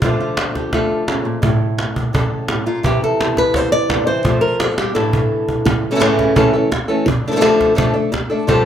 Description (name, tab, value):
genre	flamenco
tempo	170 BPM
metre	4/4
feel	straight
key	A phrygian dominant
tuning	A4 = 440 Hz
part	flamenco guitar	melody	0.0-8.7 s	A2 to D5	-16 LUFS	equal	none
part	cajon	percussion	0.0-8.7 s	none	-19 LUFS	right 1 dB	none
room	moderate large studio reverb, RT60 1.4 s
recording	close, detailed microphones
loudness	-14 LUFS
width	side -9 dB against mid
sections	0.0-5.7 A section; 5.7-8.7 B section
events	drum fill 4.8-5.7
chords	0.0 Dm; 1.4 A; 2.8 C; 4.3 F; 5.0 Asus4; 5.7 A; 7.1 Dm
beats	| 0.03 0.38 0.73 1.08 | 1.44 1.79 2.14 2.49 | 2.85 3.20 3.55 3.90 | 4.25 4.61 4.96 5.31 | 5.66 6.02 6.37 6.72 | 7.07 7.43 7.78 8.13 | 8.48